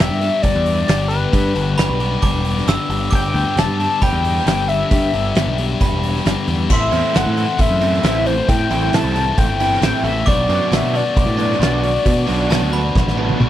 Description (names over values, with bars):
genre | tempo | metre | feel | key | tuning
indie rock | 134 BPM | 4/4 | straight | G major | A4 = 439 Hz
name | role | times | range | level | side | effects
overdriven synth lead | melody | 0.0-13.4 s | B4 to A5 | -21 LUFS | left 2 dB | tape echo
glockenspiel with brass mallets | second line | 0.0-13.5 s | G5 to E6 | -28 LUFS | right 5 dB | none
overdriven electric guitar | riff | 0.0-13.5 s | G2 to A4 | -22 LUFS | left 6 dB | none
growling picked electric bass | bass | 0.0-13.5 s | E1 to B2 | -20 LUFS | equal | overdrive
loose indie drum kit | drums | 0.0-13.5 s | crash cymbal, hi-hat, kick drum, snare drum, toms | -20 LUFS | right 1 dB | none
overdriven electric guitar | riff | 6.9-13.5 s | E3 to E4 | -24 LUFS | right 8 dB | analog chorus
room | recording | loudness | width
little or no reverb | none | -14 LUFS | side -12 dB against mid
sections
0.0-13.5 A section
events
drum fill 13.0-13.5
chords
0.0 G; 6.7 Am7; 10.3 Bm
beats
0.44 0.89 | 1.33 1.78 2.23 2.67 | 3.12 3.57 4.02 4.46 | 4.91 5.36 5.80 6.25 | 6.70 7.15 7.59 8.04 | 8.49 8.94 9.38 9.83 | 10.28 10.72 11.17 11.62 | 12.06 12.51 12.96 13.41